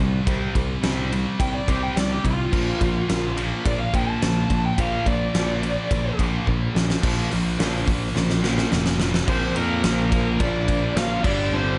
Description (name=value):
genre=hard rock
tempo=107 BPM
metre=4/4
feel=straight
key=unclear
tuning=A4 = 436 Hz
part: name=distorted electric guitar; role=riff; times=0.0-11.8 s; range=G2 to C4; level=-32 LUFS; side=equal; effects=overdrive
part: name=scooped high-gain guitar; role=riff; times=0.0-11.8 s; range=G2 to C4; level=-34 LUFS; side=equal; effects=none
part: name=scooped high-gain guitar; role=riff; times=0.0-11.8 s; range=G2 to C4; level=-32 LUFS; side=equal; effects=distortion
part: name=modern bright picked electric bass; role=bass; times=0.0-11.8 s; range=F1 to F2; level=-28 LUFS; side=equal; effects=none
part: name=huge arena drum kit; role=drums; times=0.3-11.4 s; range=crash cymbal, hi-hat, kick drum, ride cymbal, snare drum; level=-27 LUFS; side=equal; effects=none
part: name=bluesy overdriven lead guitar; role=melody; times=1.4-11.8 s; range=F4 to A5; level=-30 LUFS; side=equal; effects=distortion
part: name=lead guitar through a small cranked amp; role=second line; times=9.3-11.8 s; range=Bb3 to F4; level=-31 LUFS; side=equal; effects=overdrive
room=light reverb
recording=nothing above 10.5 kHz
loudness=-22 LUFS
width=mono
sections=0.0-7.0 A section; 7.0-9.3 B section; 9.3-11.8 C section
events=lead electric guitar solo 0.0-7.0; drum fill 6.5-7.0, 8.2-9.3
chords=0.0 C5; 2.5 Bb; 7.0 Bb5; 9.3 Bb; 11.2 G5